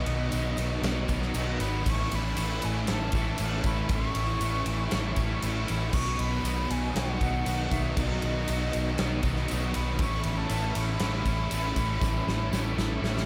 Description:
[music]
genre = rock, shoegaze and dream pop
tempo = 118 BPM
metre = 4/4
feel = straight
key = unclear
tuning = A4 = 440 Hz
[part]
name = breathy mellow silver concert flute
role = melody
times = 0.0-13.3 s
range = D#5 to C#6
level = -38 LUFS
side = equal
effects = delay
[part]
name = crunchy overdriven guitar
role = riff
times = 0.0-13.3 s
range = A2 to E4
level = -37 LUFS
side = equal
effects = ensemble chorus
[part]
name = raw garage guitar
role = riff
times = 0.0-13.3 s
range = A2 to E4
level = -38 LUFS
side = equal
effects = overdrive, reverse reverb
[part]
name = tight distorted guitar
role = riff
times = 0.0-13.3 s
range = A2 to B3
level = -39 LUFS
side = equal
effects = distortion
[part]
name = vintage muted fingered electric bass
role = bass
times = 0.0-13.2 s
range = G#1 to B1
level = -33 LUFS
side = equal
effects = none
[part]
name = huge arena drum kit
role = drums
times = 0.1-13.3 s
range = crash cymbal, kick drum, ride cymbal, snare drum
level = -34 LUFS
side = equal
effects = none
[part]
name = tambourine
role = percussion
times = 0.3-12.9 s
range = none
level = -50 LUFS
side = equal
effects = none
[sound]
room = moderate church reverb, RT60 2.7 s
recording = dreamy mix soaked in reverb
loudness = -28 LUFS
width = mono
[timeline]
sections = 0.0-13.3 A section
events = drum fill 12.0-13.3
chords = 0.0 B; 1.9 Aadd9; 5.9 B; 10.0 Aadd9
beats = 0.32 0.84 1.35 | 1.86 2.37 2.88 3.39 | 3.90 4.41 4.92 5.43 | 5.94 6.45 6.95 7.46 | 7.97 8.47 8.98 9.49 | 9.99 10.50 11.00 11.51 | 12.02 12.52 13.03

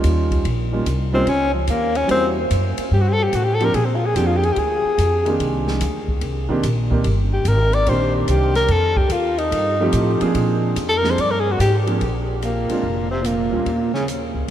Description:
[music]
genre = jazz, small-group swing and bop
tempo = 145 BPM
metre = 4/4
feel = swing 67% on 8ths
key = Bb mixolydian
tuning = A4 = 440 Hz
[part]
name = warm concert grand piano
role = accompaniment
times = 0.0-13.6 s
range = Eb3 to Ab4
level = -24 LUFS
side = right 2 dB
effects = none
[part]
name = upright bass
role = bass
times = 0.0-14.5 s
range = F1 to Bb2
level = -21 LUFS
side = equal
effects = none
[part]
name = open jazz drum kit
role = drums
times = 0.0-14.5 s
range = hi-hat, kick drum, ride cymbal, snare drum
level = -29 LUFS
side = equal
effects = none
[part]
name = breathy tenor saxophone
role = melody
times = 1.1-14.1 s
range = F3 to D5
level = -21 LUFS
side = left 1 dB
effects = none
[part]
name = breathy baritone saxophone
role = second line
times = 12.4-14.1 s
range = Bb2 to Db3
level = -24 LUFS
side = right 2 dB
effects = none
[sound]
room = wet cathedral reverb, RT60 6.3 s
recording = in a vast, echoing space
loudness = -17 LUFS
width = side -11 dB against mid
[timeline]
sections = 0.0-12.0 A section; 12.0-14.5 B section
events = tenor saxophone solo 0.0-12.0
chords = 0.0 Eb9; 2.1 Edim7; 3.7 Bb9; 5.4 Cm7; 8.7 F9; 10.3 Bb9; 12.0 Bb; 13.7 Eb7(no3)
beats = 0.03 | 0.44 0.86 1.27 1.68 | 2.09 2.51 2.92 3.33 | 3.75 4.16 4.57 4.98 | 5.39 5.81 6.22 6.63 | 7.05 7.46 7.87 8.29 | 8.70 9.11 9.52 9.94 | 10.35 10.76 11.18 11.59 | 12.00 12.42 12.83 13.24 | 13.66 14.07 14.49

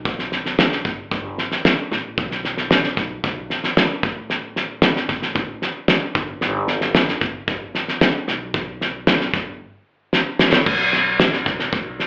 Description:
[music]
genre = indie folk with a building arrangement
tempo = 113 BPM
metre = 4/4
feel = straight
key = unclear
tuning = A4 = 441 Hz
[part]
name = upright bass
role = bass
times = 0.0-12.0 s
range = G1 to B1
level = -30 LUFS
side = equal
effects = none
[part]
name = cloth-damped thuddy drum kit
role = drums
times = 0.1-12.1 s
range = crash cymbal, kick drum, snare drum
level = -18 LUFS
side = equal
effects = none
[sound]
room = moderate club reverb, RT60 0.6 s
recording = live gig heard through the venue's PA, club reverb, telephone sound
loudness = -17 LUFS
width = side -34 dB against mid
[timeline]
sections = 0.0-10.7 A section; 10.7-12.1 A section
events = drum fill 10.1-10.7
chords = none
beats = | 0.06 0.58 1.12 1.65 | 2.18 2.71 3.24 3.77 | 4.30 4.83 5.36 5.89 | 6.42 6.95 7.48 8.01 | 8.54 9.07 9.61 10.14 | 10.67 11.20 11.73

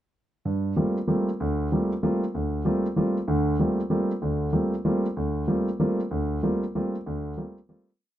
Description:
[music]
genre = jazz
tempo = 191 BPM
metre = 3/4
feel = swing 62% on 8ths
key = G minor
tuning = A4 = 440 Hz
[part]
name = warm grand piano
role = solo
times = 0.5-7.9 s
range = D2 to F4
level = -23 LUFS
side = equal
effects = none
[sound]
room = moderate studio reverb, RT60 0.6 s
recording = close, detailed microphones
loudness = -24 LUFS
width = side -12 dB against mid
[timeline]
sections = 0.4-8.0 A section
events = fade-out 6.5-8.0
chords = 0.4 Gm11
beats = | 0.45 0.76 1.08 | 1.39 1.71 2.02 | 2.33 2.65 2.96 | 3.27 3.59 3.90 | 4.21 4.53 4.84 | 5.15 5.47 5.78 | 6.10 6.41 6.73 | 7.04 7.36 7.67

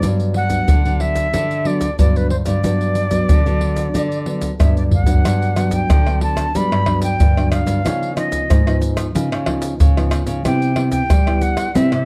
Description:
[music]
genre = samba and choro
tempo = 92 BPM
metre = 4/4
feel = straight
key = G major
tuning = A4 = 440 Hz
[part]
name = jazz flute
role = melody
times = 0.0-12.1 s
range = B4 to B5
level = -25 LUFS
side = equal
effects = none
[part]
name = nylon-string guitar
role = accompaniment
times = 0.0-12.1 s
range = G2 to E4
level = -26 LUFS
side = equal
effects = none
[part]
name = nylon-string guitar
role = bass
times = 0.0-12.1 s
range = G2 to C4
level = -23 LUFS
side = equal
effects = none
[part]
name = egg shaker, surdo, pandeiro and tamborim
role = percussion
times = 0.0-12.1 s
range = none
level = -19 LUFS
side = equal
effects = none
[sound]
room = light reverb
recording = dark, warm production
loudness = -17 LUFS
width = mono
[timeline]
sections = 0.0-5.2 A section; 5.2-12.1 B section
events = drum fill 4.6-5.2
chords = 0.0 Gmaj7; 7.9 C#9; 10.5 Cmaj7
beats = | 0.03 0.69 1.34 1.99 | 2.64 3.29 3.95 4.60 | 5.25 5.90 6.55 7.20 | 7.85 8.50 9.15 9.80 | 10.46 11.11 11.76

